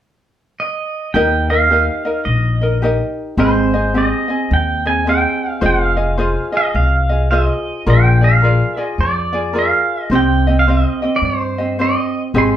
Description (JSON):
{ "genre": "Hawaiian", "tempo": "107 BPM", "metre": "4/4", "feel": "swing 63% on 8ths", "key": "Eb major", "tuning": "A4 = 440 Hz", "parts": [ { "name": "pedal steel guitar", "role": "melody", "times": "0.6-12.6 s", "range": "C5 to C6", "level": "-18 LUFS", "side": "right 2 dB", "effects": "none" }, { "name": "ukulele", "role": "accompaniment", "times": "1.1-12.6 s", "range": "C4 to Eb5", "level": "-18 LUFS", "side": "equal", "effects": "none" }, { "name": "upright bass", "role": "bass", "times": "1.1-12.6 s", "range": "F1 to G2", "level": "-16 LUFS", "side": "left 1 dB", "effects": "none" } ], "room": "wet studio reverb, RT60 0.7 s", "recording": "band playing live in one room", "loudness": "-13 LUFS", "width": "side -10 dB against mid", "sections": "0.0-1.1 A section; 1.1-12.6 B section", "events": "none", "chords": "0.0 N.C.; 1.1 Eb; 3.4 Abmaj7; 5.6 Fm7; 7.9 Bb7; 10.1 Cm", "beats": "0.02 0.58 | 1.14 1.70 2.26 2.83 | 3.39 3.95 4.51 5.07 | 5.63 6.19 6.75 7.31 | 7.87 8.43 8.99 9.55 | 10.11 10.67 11.23 11.79 | 12.35" }